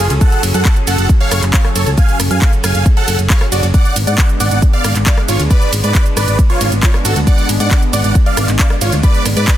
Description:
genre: uplifting trance.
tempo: 136 BPM.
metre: 4/4.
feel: straight.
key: unclear.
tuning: A4 = 440 Hz.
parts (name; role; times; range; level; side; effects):
big supersaw lead; melody; 0.0-9.6 s; E#4 to G#5; -18 LUFS; right 1 dB; phaser, sidechain pumping, dub echo.
supersaw pad; sustained chords; 0.0-9.6 s; F#3 to A4; -22 LUFS; equal; phaser, vintage 12-bit sampler grit, sidechain pumping.
solid FM bass; bass; 0.0-9.5 s; F#1 to G#2; -15 LUFS; equal; sidechain pumping.
house drum kit; drums; 0.1-9.6 s; handclaps, hi-hat, ride cymbal, rim click, shaker; -20 LUFS; right 1 dB; sidechain pumping on hats, sidechain pumping on perc, sidechain pumping on cymbals.
electronic kick drum; drums; 0.2-9.6 s; none; -12 LUFS; equal; none.
room: little or no reverb.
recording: dense, heavily limited modern master.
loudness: -10 LUFS.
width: side -12 dB against mid.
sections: 0.0-9.6 A section.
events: none.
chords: 0.0 F#madd9; 3.7 G#dim.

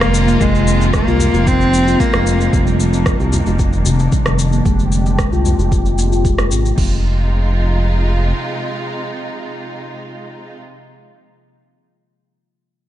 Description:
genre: organic downtempo.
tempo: 113 BPM.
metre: 4/4.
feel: straight.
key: F dorian.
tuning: A4 = 440 Hz.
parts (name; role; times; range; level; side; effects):
rich cello; melody; 0.0-2.5 s; Ab3 to C4; -18 LUFS; equal; digital delay.
clear studio string section; sustained chords; 0.0-10.6 s; C3 to G4; -24 LUFS; equal; sidechain pumping, low-pass filter.
steel tongue drum; arpeggios; 0.0-7.0 s; C3 to F4; -20 LUFS; left 2 dB; low-pass filter, digital delay.
smooth synth bass; bass; 0.0-8.3 s; F1 to C2; -16 LUFS; equal; tube saturation.
electronic rim click and shaker; drums; 0.0-6.8 s; none; -23 LUFS; equal; overdrive.
djembe; percussion; 0.1-6.6 s; none; -25 LUFS; left 1 dB; none.
afro-pop drum kit; drums; 0.4-6.9 s; crash cymbal, kick drum; -19 LUFS; equal; overdrive.
room: light reverb, small room ambience.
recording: dark, warm production, nothing above 10.6 kHz.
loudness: -13 LUFS.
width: side -12 dB against mid.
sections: 0.0-6.8 A section; 6.8-11.0 B section.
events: filter sweep on steel tongue drum 0.0-6.8; filter sweep on string section 0.0-6.8.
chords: 0.0 Fm7; 2.5 Cm9/F; 4.7 Bb13/F (rootless); 6.8 Fm7.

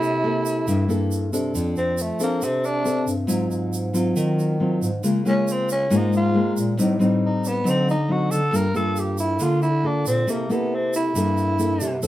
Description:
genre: bossa nova.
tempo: 137 BPM.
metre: 4/4.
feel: straight.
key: F major.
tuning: A4 = 435 Hz.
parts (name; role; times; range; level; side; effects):
growling tenor saxophone; melody; 0.0-12.0 s; A3 to Bb4; -24 LUFS; equal; none.
nylon-string guitar; accompaniment; 0.0-12.1 s; G2 to A4; -22 LUFS; left 1 dB; none.
dark bass clarinet; bass; 0.0-12.1 s; F2 to Eb3; -26 LUFS; equal; none.
tube shaker; percussion; 0.0-12.1 s; none; -35 LUFS; right 5 dB; none.
room: moderate studio ambience, RT60 0.5 s.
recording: band playing live in one room.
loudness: -19 LUFS.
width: side -14 dB against mid.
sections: 0.0-1.5 A section; 1.5-12.1 B section.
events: tenor saxophone solo 1.5-12.1.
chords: 0.0 C13; 1.5 F6; 3.3 Ab6; 5.0 Db6; 6.8 Am7b5; 7.7 D7b9; 8.5 Gm9; 10.3 C6.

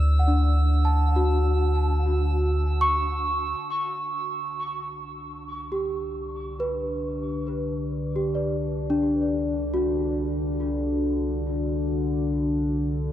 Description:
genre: ambient.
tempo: free time.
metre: none.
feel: none.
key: unclear.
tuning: A4 = 439 Hz.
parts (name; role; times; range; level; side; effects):
celesta; arpeggios; 0.0-13.1 s; D4 to C#6; -27 LUFS; equal; tape echo.
warm sub bass; bass; 0.0-13.1 s; C2 to D2; -25 LUFS; equal; none.
analog drone; drone; 0.0-13.1 s; D3 to E4; -30 LUFS; left 2 dB; chorus.
drifting glass-harmonics texture; texture; 0.0-3.6 s; E6; -37 LUFS; right 3 dB; chorus, built-in reverb.
room: moderate huge ambient reverb, RT60 8.8 s.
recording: dark, warm production.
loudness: -23 LUFS.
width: side -12 dB against mid.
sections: 0.0-3.6 A section; 3.6-13.1 B section.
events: fade-in on sub bass 3.6-13.1.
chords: 0.0 Esus4/D; 3.6 Csus2.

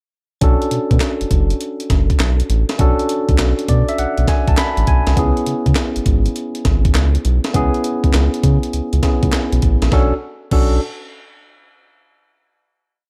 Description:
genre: R&B, new jack swing.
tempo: 101 BPM.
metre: 4/4.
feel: swing 66% on 16ths.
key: B dorian.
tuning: A4 = 441 Hz.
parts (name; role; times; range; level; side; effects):
tine electric piano; accompaniment; 0.4-10.8 s; B3 to B5; -23 LUFS; equal; none.
round analog bass; bass; 0.4-10.8 s; F#1 to C#3; -18 LUFS; equal; none.
breakbeat sampler-style drum kit; drums; 0.4-10.7 s; crash cymbal, handclaps, hi-hat, kick drum, snare drum; -20 LUFS; equal; none.
room: digital ambience.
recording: dark, warm production.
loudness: -16 LUFS.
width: mono.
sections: 0.4-9.9 verse; 9.9-12.3 final chord.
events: tine electric piano fill 3.4-5.2.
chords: 0.4 Bm9; 5.2 C#m7; 9.9 Bm9.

